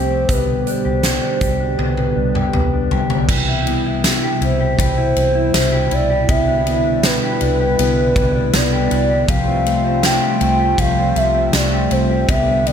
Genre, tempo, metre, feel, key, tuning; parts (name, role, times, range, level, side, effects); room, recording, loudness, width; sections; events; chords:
dream pop; 80 BPM; 4/4; straight; C major; A4 = 440 Hz
hollow clarinet-like synth lead; melody; 0.0-12.7 s; B4 to G5; -20 LUFS; equal; chorus, ping-pong delay
hollow soft pad; sustained chords; 0.0-12.7 s; B2 to G4; -22 LUFS; right 3 dB; chorus
mellow electric guitar; arpeggios; 0.0-12.7 s; E3 to G4; -22 LUFS; left 5 dB; wide subtle chorus, ping-pong delay
vintage muted fingered electric bass; bass; 0.0-12.7 s; C2; -20 LUFS; equal
huge arena drum kit; drums; 0.3-12.7 s; crash cymbal, hi-hat, kick drum, ride cymbal, snare drum, tambourine, toms; -21 LUFS; equal
light reverb; -14 LUFS; side -8 dB against mid
0.0-3.3 A section; 3.3-12.7 B section
drum fill 1.8-3.3
0.3 G/C; 3.3 Cmaj7; 6.3 Em7/C; 9.3 Fadd9/C